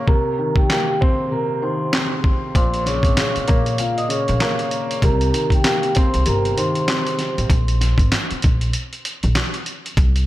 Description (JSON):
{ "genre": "hip hop, boom-bap hip-hop", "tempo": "97 BPM", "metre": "4/4", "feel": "swing 60% on 16ths", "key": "unclear", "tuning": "A4 = 440 Hz", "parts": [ { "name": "vibraphone with soft mallets", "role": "melody", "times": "0.0-7.5 s", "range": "F4 to Eb6", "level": "-23 LUFS", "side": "right 1 dB", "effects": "high-pass filter, low-pass filter, analog delay" }, { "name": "dark upright piano", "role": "accompaniment", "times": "0.0-7.5 s", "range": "Bb2 to C4", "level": "-23 LUFS", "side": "left 1 dB", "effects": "high-pass filter, low-pass filter" }, { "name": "dusty soul sampler-style drum kit", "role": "drums", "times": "0.1-10.3 s", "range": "handclaps, hi-hat, kick drum, snare drum", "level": "-19 LUFS", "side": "equal", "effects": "none" }, { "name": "upright bass", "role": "bass", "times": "2.6-10.2 s", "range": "G1 to C2", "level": "-20 LUFS", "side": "equal", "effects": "none" } ], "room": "small room ambience", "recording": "none", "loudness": "-16 LUFS", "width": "side -15 dB against mid", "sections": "0.0-10.3 A section", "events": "break 0.0-2.6", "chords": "0.1 Cm7; 2.6 Bbm7; 5.0 Cm7; 7.5 N.C.", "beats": "| 0.08 0.69 1.31 1.93 | 2.55 3.17 3.79 4.41 | 5.03 5.64 6.26 6.88 | 7.50 8.12 8.74 9.36 | 9.97" }